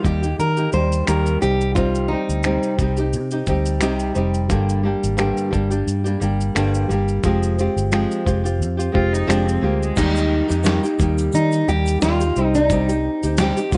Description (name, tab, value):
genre	acoustic pop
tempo	88 BPM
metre	4/4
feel	swing 55% on 16ths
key	Eb major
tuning	A4 = 440 Hz
part	fingerpicked steel-string acoustic guitar	melody	0.0-2.7, 10.0-13.8 s	Eb4 to C5	-24 LUFS	equal	none
part	flamenco guitar	accompaniment	0.0-13.8 s	G2 to G4	-24 LUFS	equal	none
part	vintage muted fingered electric bass	bass	0.0-13.8 s	F1 to Eb3	-24 LUFS	equal	none
part	dusty soul sampler-style drum kit	drums	0.0-13.8 s	crash cymbal, finger snaps, kick drum, shaker, snare drum	-27 LUFS	equal	none
part	rich cello	second line	8.9-10.1 s	Ab3 to F4	-29 LUFS	equal	none
part	tube shaker	percussion	10.0-13.8 s	none	-43 LUFS	equal	none
room	little or no reverb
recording	nothing above 10.5 kHz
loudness	-20 LUFS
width	mono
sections	0.0-10.0 A section; 10.0-13.8 B section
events	none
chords	0.0 Eb; 1.4 Cm; 4.5 Gm; 7.2 Fmadd9; 10.0 Eb; 12.4 Cm